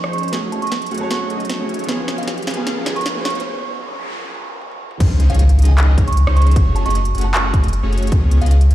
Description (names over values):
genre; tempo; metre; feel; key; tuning
future bass; 154 BPM; 4/4; half-time; Db major; A4 = 436 Hz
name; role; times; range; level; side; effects
clear concert grand piano; accompaniment; 0.0-3.3 s; F3 to Db5; -30 LUFS; left 1 dB; sidechain pumping, dub echo
ethereal airy pad; sustained chords; 0.0-5.0 s; F3 to C5; -34 LUFS; left 1 dB; ensemble chorus, built-in reverb, sidechain pumping
big bright polysynth; riff; 0.0-8.7 s; F3 to Gb5; -26 LUFS; equal; sidechain pumping
trap drum kit; drums; 0.0-8.7 s; crash cymbal, handclaps, hi-hat, rim click, snare drum, toms; -25 LUFS; equal; high-pass filter on hats, high-pass filter on snare, high-pass filter on toms, high-pass filter on cymbals
riser, noise sweep and impact; sound effects; 0.8-6.6 s; none; -28 LUFS; equal; none
kalimba; melody; 0.1-8.6 s; F5 to Db6; -26 LUFS; right 5 dB; sidechain pumping, low-pass filter, ping-pong delay
saturated sub bass; bass; 5.0-8.7 s; Gb1 to Db2; -13 LUFS; equal; sidechain pumping
electronic kick drum; drums; 5.0-8.2 s; none; -15 LUFS; equal; none
room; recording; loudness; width
little or no reverb; played on a big sound system in a bare room, stone room reverb, high-pass filter; -14 LUFS; side -13 dB against mid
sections
0.0-5.0 A section; 5.0-8.7 B section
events
build-up 0.0-5.0; drum fill 0.0-3.4, 4.6-5.0; filter sweep on analog polysynth 0.0-5.0; filter sweep on kalimba 0.0-5.0; riser 0.8-3.4; break 3.4-5.0; noise sweep 3.4-5.0; drop 5.0-8.7; impact 5.0-6.6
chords
0.3 Gbmadd9; 1.9 Db7; 3.3 Gbmaj7; 5.0 Dbmaj9; 6.6 Gbmadd9; 8.1 Db7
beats
| 0.33 0.72 1.11 1.50 | 1.89 2.28 2.67 3.06 | 3.45 3.83 4.22 4.62 | 5.00 5.39 5.78 6.17 | 6.56 6.95 7.34 7.73 | 8.12 8.51